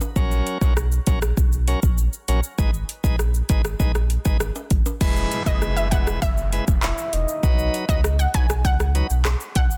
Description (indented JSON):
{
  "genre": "dancehall",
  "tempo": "99 BPM",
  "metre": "4/4",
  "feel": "straight",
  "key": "unclear",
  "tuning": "A4 = 442 Hz",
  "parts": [
    { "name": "afro-pop drum kit", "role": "drums", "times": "0.0-9.8 s", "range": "crash cymbal, handclaps, hi-hat, kick drum, rim click, shaker", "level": "-24 LUFS", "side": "equal", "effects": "soft clipping on snare" },
    { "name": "timbales and egg shaker", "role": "percussion", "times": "0.0-9.8 s", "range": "none", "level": "-39 LUFS", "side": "equal", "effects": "none" },
    { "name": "bright tonewheel organ", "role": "accompaniment", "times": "0.2-9.1 s", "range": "F#3 to B4", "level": "-32 LUFS", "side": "equal", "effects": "overdrive, stopped rotary speaker" },
    { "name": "sub bass with octave", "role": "bass", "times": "0.2-9.7 s", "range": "E1 to C#2", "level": "-25 LUFS", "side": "equal", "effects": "none" },
    { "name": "downlifter", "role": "sound effects", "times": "5.0-9.8 s", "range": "none", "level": "-39 LUFS", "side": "equal", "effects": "none" },
    { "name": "analog pluck", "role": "melody", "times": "5.5-9.7 s", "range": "D#5 to G#5", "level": "-31 LUFS", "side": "equal", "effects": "chorus, delay" },
    { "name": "soft octave-layered synth lead", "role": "second line", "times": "6.8-7.7 s", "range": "D#5 to E5", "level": "-31 LUFS", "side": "equal", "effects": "chorus, phaser, delay" }
  ],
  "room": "little or no reverb",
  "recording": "dense, heavily limited modern master",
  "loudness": "-21 LUFS",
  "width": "mono",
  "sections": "0.0-5.0 A section; 5.0-9.8 B section",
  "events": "none",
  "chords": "0.2 F#/A#; 2.6 G#m; 5.0 E; 7.4 B",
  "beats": "| 0.16 0.77 1.37 1.98 | 2.59 3.19 3.80 4.40 | 5.01 5.62 6.22 6.83 | 7.43 8.04 8.65 9.25"
}